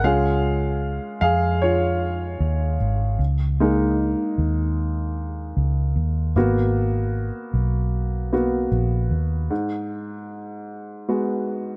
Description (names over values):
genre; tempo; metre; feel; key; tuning
pop ballad; 76 BPM; 4/4; straight; G# minor; A4 = 441 Hz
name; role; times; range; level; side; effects
warm upright piano; accompaniment; 0.0-11.8 s; G#2 to E#5; -26 LUFS; equal; none
vintage muted fingered electric bass; bass; 0.0-9.5 s; G#1 to E#2; -24 LUFS; equal; none
room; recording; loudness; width
light reverb; dark, warm production; -23 LUFS; mono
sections
0.0-9.5 A section; 9.5-11.8 B section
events
upright piano solo 0.0-9.5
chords
0.0 C#; 3.2 G#sus24/C#; 6.4 G#m7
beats
| 0.04 0.82 1.61 2.40 | 3.19 3.98 4.77 5.56 | 6.35 7.14 7.93 8.72 | 9.51 10.30 11.09